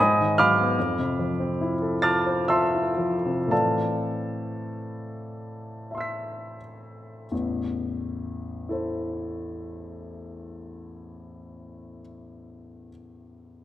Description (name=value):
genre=classical, impressionist solo piano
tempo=41-76 BPM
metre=3/4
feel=rubato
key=A minor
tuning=A4 = 442 Hz
part: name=warm baby grand piano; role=solo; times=0.0-13.6 s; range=A1 to B6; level=-24 LUFS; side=equal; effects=none
room=wet concert hall reverb, RT60 1.9 s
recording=none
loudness=-23 LUFS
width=side -13 dB against mid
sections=0.0-7.3 A section; 7.3-11.4 B section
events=slowing down 0.0-7.3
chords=0.0 G#m7; 0.8 Fmaj7; 3.5 Amadd9; 7.3 Am